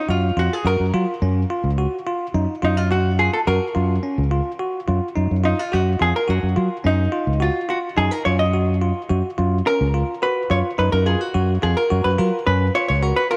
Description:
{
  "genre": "progressive instrumental, progressive",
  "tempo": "107 BPM",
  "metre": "5/4",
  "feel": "straight",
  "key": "F# major",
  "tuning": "A4 = 442 Hz",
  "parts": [
    { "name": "hollow-body jazz guitar", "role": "accompaniment", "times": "0.0-13.4 s", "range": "D#4 to D#5", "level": "-24 LUFS", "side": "equal", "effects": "none" },
    { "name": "bell-like tine electric piano", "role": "arpeggios", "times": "0.1-13.4 s", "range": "C#4 to F#4", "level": "-28 LUFS", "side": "equal", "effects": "none" },
    { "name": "fingered electric bass", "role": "bass", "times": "0.1-13.1 s", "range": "C#2 to F#3", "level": "-22 LUFS", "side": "equal", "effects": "none" }
  ],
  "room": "light reverb, digital ambience",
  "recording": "none",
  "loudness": "-20 LUFS",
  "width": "mono",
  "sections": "0.0-13.4 A section",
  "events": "hollow-body jazz guitar solo 0.0-13.4",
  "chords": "0.0 F#maj7"
}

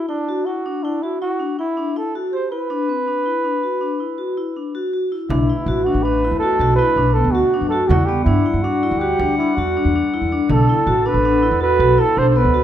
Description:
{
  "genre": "contemporary instrumental, chamber music in an uneven meter",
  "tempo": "162 BPM",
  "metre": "7/4",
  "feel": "straight",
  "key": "B minor",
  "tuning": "A4 = 441 Hz",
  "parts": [
    { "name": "mellow flugelhorn", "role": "melody", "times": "0.0-12.6 s", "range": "D4 to C5", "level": "-20 LUFS", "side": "right 2 dB", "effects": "none" },
    { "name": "vibraphone with medium hard mallets", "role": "arpeggios", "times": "0.0-12.6 s", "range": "B3 to G4", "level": "-20 LUFS", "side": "left 2 dB", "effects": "none" },
    { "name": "clear woodwind section", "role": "sustained chords", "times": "5.3-12.6 s", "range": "B2 to F#5", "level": "-26 LUFS", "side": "left 1 dB", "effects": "none" },
    { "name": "upright bass", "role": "bass", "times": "5.3-12.6 s", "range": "A1 to G2", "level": "-20 LUFS", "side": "right 1 dB", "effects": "none" },
    { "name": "frame drum", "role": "percussion", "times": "5.3-12.6 s", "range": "none", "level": "-25 LUFS", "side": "right 1 dB", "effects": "none" }
  ],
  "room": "moderate recital hall reverb, RT60 1.4 s",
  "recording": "minimal, uncompressed stereo recording",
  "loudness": "-16 LUFS",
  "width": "side -10 dB against mid",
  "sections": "0.0-5.3 A section; 5.3-12.6 B section",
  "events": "none",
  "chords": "0.1 Dadd9; 2.7 E5; 5.3 Bm7; 7.9 Em9; 10.5 Bm7"
}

